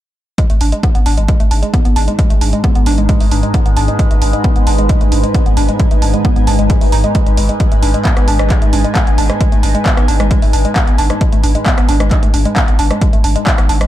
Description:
driving peak-time techno; 133 BPM; 4/4; straight; G# minor; A4 = 438 Hz
woody wave-folded pluck; riff; 0.4-13.9 s; G#3 to D#4; -19 LUFS; right 1 dB; chorus, sidechain pumping, dub echo
overtone-sweeping drone; drone; 1.1-13.9 s; G#2 to G#3; -22 LUFS; equal; chorus, built-in reverb, sidechain pumping
electronic kick drum; drums; 0.4-13.6 s; -13 LUFS; equal
punchy analog drum machine; drums; 0.4-13.9 s; handclaps, hi-hat, rim click; -21 LUFS; right 1 dB; sidechain pumping on hats
granular cloud pad; texture; 1.5-13.9 s; D#4 to G#5; -22 LUFS; equal; built-in reverb, sidechain pumping
saturated sub bass; bass; 0.5-13.9 s; G#1; -14 LUFS; equal; overdrive, sidechain pumping, low-pass filter
little or no reverb; dark, warm production; -10 LUFS; side -13 dB against mid
0.4-13.9 A section
0.4 G#m

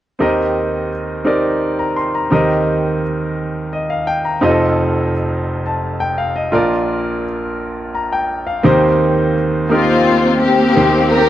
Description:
gospel; 57 BPM (dotted quarters); 6/8; straight; Eb major; A4 = 440 Hz
clear grand piano; accompaniment; 0.2-11.3 s; F1 to C6; -15 LUFS; equal
warm studio string section; melody; 9.7-11.3 s; Bb3 to Bb4; -12 LUFS; left 2 dB
moderate studio reverb, RT60 0.7 s; dry, close 1970s-style studio recording; -14 LUFS; side -12 dB against mid
0.2-8.6 A section; 8.6-11.3 B section
0.2 Eb6; 2.3 Cm7/Eb; 4.4 F7; 6.5 Bb; 8.6 Eb6; 10.8 Cm7/Eb

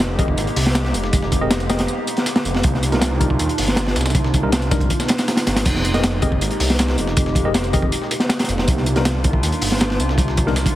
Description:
drum and bass, jungle; 159 BPM; 4/4; straight; F minor; A4 = 440 Hz
warbly tape-like pad; sustained chords; 0.0-10.8 s; Ab3 to G4; -26 LUFS; right 1 dB; chorus, built-in reverb, vintage 12-bit sampler grit
detuned saw bass; bass; 0.0-10.8 s; F1 to Eb2; -21 LUFS; equal
crunchy breakbeat drum kit; drums; 0.0-10.7 s; crash cymbal, hi-hat, kick drum, snare drum; -19 LUFS; equal
dusty soul sampler-style drum kit; drums; 0.0-10.7 s; hi-hat, snare drum, tambourine; -28 LUFS; equal; high-pass filter on perc, high-pass filter on hats, high-pass filter on snare
tine electric piano; stabs; 0.2-10.5 s; G3 to Eb5; -26 LUFS; left 2 dB; overdrive, fast stereo tremolo, dub echo
light reverb, studio reverb; heavily compressed radio sound; -16 LUFS; side -14 dB against mid
0.0-5.7 A section; 5.7-10.8 A section
drop 0.0-5.7, 5.7-10.8
0.0 Fm11; 2.6 Cm11; 5.7 Fm11; 8.7 Cm11

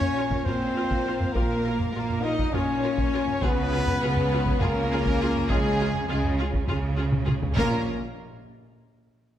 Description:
cinematic, epic orchestral film score; 202 BPM (eighths); 7/8; straight; Bb minor; A4 = 440 Hz
warm symphonic violin section; second line; 0.0-7.9 s; Ab4 to Bb5; -35 LUFS; left 2 dB
rich symphonic string section; sustained chords; 0.0-7.9 s; Bb3 to F5; -37 LUFS; right 1 dB
warm French horn section; sustained chords; 0.0-7.8 s; Ab3 to Eb4; -28 LUFS; left 3 dB
mellow trumpet; stabs; 0.0-7.8 s; Ab4 to Eb5; -33 LUFS; right 1 dB
warm symphonic cello section; bass; 0.0-7.9 s; Bb2 to Db3; -32 LUFS; right 3 dB
warm symphonic double bass section; bass; 0.0-7.9 s; Bb1 to Db2; -30 LUFS; right 2 dB
taiko ensemble; drums; 0.0-8.7 s; -29 LUFS; equal
rich studio violin section; melody; 0.2-7.9 s; Ab4 to Bb4; -40 LUFS; left 3 dB
clear symphonic viola section; accompaniment; 0.2-7.9 s; Db4 to F4; -37 LUFS; right 1 dB
timpani; percussion; 7.6-7.8 s; Bb2; -34 LUFS; equal
moderate scoring stage reverb, RT60 1.7 s; -22 LUFS; side -11 dB against mid
0.0-7.6 A section; 7.6-9.4 B section
drum fill 7.1-7.6
0.0 Bbm; 3.4 Db7; 7.6 Bbm

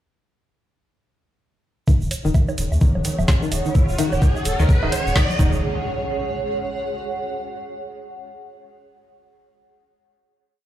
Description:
minimal techno; 128 BPM; 4/4; swing 60% on 16ths; Eb minor; A4 = 440 Hz
string-like resonator pluck; riff; 1.9-5.6 s; Eb3; -25 LUFS; left 1 dB; chorus, sidechain pumping, dub echo
electronic kick drum; drums; 1.9-5.5 s; -16 LUFS; equal; overdrive
tube shaker; percussion; 1.9-5.6 s; -35 LUFS; right 4 dB
woodblock, bongos and congas; percussion; 1.9-5.5 s; -30 LUFS; right 2 dB; dub echo
riser and impact; sound effects; 2.5-7.3 s; -29 LUFS; equal
granular cloud pad; texture; 2.6-7.5 s; Ab4 to Gb5; -27 LUFS; right 2 dB; built-in reverb, sidechain pumping
rubbery square bass; bass; 2.0-5.6 s; Eb1 to Eb2; -22 LUFS; equal; tube saturation, sidechain pumping
garage drum kit; drums; 2.1-5.3 s; hi-hat, snare drum; -24 LUFS; right 1 dB; overdrive
moderate small room reverb, RT60 0.5 s; played on a big sound system in a bare room, large studio reverb; -18 LUFS; side -12 dB against mid
1.9-5.6 build; 5.6-7.5 final note
build-up 1.9-5.6; filter sweep on synth pluck 1.9-5.6; riser 2.5-5.6
1.9 Ebm7; 5.6 Ab7sus4

